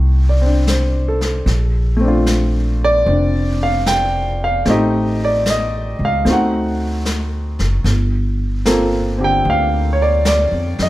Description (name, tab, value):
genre	jazz ballad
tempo	75 BPM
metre	4/4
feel	swing 67% on 8ths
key	unclear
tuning	A4 = 440 Hz
part	warm concert grand piano	accompaniment	0.0-10.9 s	D3 to G5	-17 LUFS	equal	none
part	upright bass	bass	0.0-10.9 s	F1 to Gb2	-17 LUFS	equal	none
part	vintage brush drum kit	drums	0.7-10.9 s	brushed snare drum, hi-hat, snare drum	-25 LUFS	left 1 dB	none
room	light reverb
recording	none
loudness	-14 LUFS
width	side -16 dB against mid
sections	0.0-7.9 A section; 7.9-10.9 B section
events	none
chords	0.0 F7; 1.5 Bbmaj9; 4.7 Am7b5; 6.3 D7b9; 7.9 Gm11